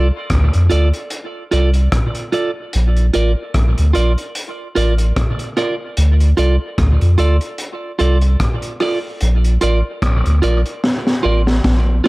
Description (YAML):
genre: dub reggae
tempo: 74 BPM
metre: 4/4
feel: swing 56% on 16ths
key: D minor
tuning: A4 = 441 Hz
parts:
  - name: clean electric guitar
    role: accompaniment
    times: 0.0-12.1 s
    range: F4 to D5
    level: -21 LUFS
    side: right 3 dB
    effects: dub echo
  - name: warm sub bass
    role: bass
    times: 0.0-12.0 s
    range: A1 to F2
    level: -13 LUFS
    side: equal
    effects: none
  - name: crunchy breakbeat drum kit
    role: drums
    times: 0.3-12.1 s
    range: hi-hat, kick drum, rim click, snare drum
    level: -20 LUFS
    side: equal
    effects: none
room: light reverb, studio ambience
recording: echo-heavy mix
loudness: -14 LUFS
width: side -22 dB against mid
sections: 0.0-12.1 A section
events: drum fill 10.8-12.1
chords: 0.0 Dm; 2.7 Bb; 6.0 Dm; 9.2 Bb